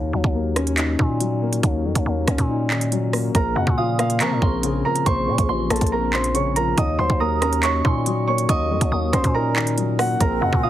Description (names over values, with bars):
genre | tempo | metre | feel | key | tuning
hip hop, drill | 140 BPM | 4/4 | half-time | unclear | A4 = 440 Hz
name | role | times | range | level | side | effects
dark grand piano | accompaniment | 0.0-10.7 s | Bb2 to Eb4 | -24 LUFS | left 5 dB | none
growling 808-style bass | bass | 0.0-10.7 s | A1 to F3 | -24 LUFS | right 1 dB | none
drill drum kit | drums | 0.2-10.6 s | handclaps, hi-hat, kick drum, rim click | -22 LUFS | right 1 dB | none
dark concert grand piano | melody | 3.4-10.7 s | F4 to Eb6 | -23 LUFS | right 3 dB | none
soft synth bell | second line | 3.8-10.7 s | C6 to Eb6 | -29 LUFS | right 5 dB | chorus, phaser, ping-pong delay
breathy small flute group | sustained chords | 10.2-10.7 s | C4 to Bb4 | -29 LUFS | right 2 dB | none
room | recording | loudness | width
little or no reverb | heavily compressed radio sound, multiband compression | -18 LUFS | side -12 dB against mid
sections
0.0-3.3 A section; 3.3-10.7 B section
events
none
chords
0.0 Ebm7; 3.3 Bbmadd9; 6.8 Ebm7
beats
0.35 0.78 1.21 | 1.63 2.06 2.49 2.92 | 3.35 3.78 4.21 4.63 | 5.06 5.49 5.92 6.35 | 6.78 7.21 7.63 8.06 | 8.49 8.92 9.35 9.78 | 10.21 10.63